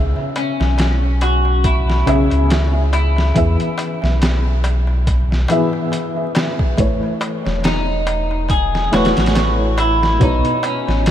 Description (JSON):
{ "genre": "trip hop", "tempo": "70 BPM", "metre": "4/4", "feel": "swing 56% on 16ths", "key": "C# minor", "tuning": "A4 = 440 Hz", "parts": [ { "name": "felt-muted upright piano", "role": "accompaniment", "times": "0.0-11.1 s", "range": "B2 to E5", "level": "-20 LUFS", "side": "left 1 dB", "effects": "tremolo, vintage 12-bit sampler grit, tape echo" }, { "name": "soft dub sub bass", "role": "bass", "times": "0.0-11.1 s", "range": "E1 to E2", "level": "-17 LUFS", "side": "equal", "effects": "tube saturation" }, { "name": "darbuka", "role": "percussion", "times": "0.2-11.1 s", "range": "none", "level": "-31 LUFS", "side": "left 2 dB", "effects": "none" }, { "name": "clean electric guitar", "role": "melody", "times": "0.4-11.1 s", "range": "C#4 to G#4", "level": "-21 LUFS", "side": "equal", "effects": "analog chorus, tape echo" }, { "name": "trip hop sampler-style drum kit", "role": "drums", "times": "0.4-11.1 s", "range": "hi-hat, kick drum, snare drum", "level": "-20 LUFS", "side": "equal", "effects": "overdrive, studio reverb" } ], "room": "moderate huge ambient reverb, RT60 4.3 s", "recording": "dreamy mix soaked in reverb, vinyl crackle", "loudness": "-14 LUFS", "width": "side -10 dB against mid", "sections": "0.0-11.1 A section", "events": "none", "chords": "0.0 C#m; 3.4 E; 6.8 Aadd9; 10.2 Badd9", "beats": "0.79 1.64 2.50 | 3.36 4.21 5.07 5.93 | 6.79 7.64 8.50 9.36 | 10.21 11.07" }